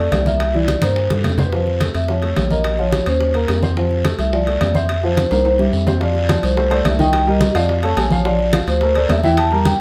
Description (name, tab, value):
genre	Afro-Cuban jazz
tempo	214 BPM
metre	4/4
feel	straight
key	F major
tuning	A4 = 441 Hz
part	vibraphone with soft mallets	melody	0.0-9.8 s	A4 to Bb5	-22 LUFS	equal	none
part	warm upright piano	accompaniment	0.0-9.7 s	Eb3 to F5	-24 LUFS	equal	none
part	round analog bass	bass	0.0-9.7 s	Bb1 to G2	-22 LUFS	equal	none
part	bongos	percussion	0.1-9.8 s	none	-32 LUFS	equal	none
part	congas	percussion	0.1-9.8 s	none	-25 LUFS	equal	none
part	guiro	percussion	0.1-9.8 s	none	-36 LUFS	equal	none
part	timbales	percussion	0.1-9.8 s	none	-29 LUFS	equal	none
room	moderate studio reverb, RT60 0.7 s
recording	none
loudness	-17 LUFS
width	mono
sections	0.0-6.0 A section; 6.0-9.8 B section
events	drum fill 0.8-1.5, 4.9-6.0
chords	0.4 C13; 1.5 F; 2.1 Faug; 2.6 Bbm; 3.2 Ebsus2; 3.8 F; 5.5 C7; 6.0 F; 7.1 Cm7; 7.7 Faug; 8.3 Bbmaj7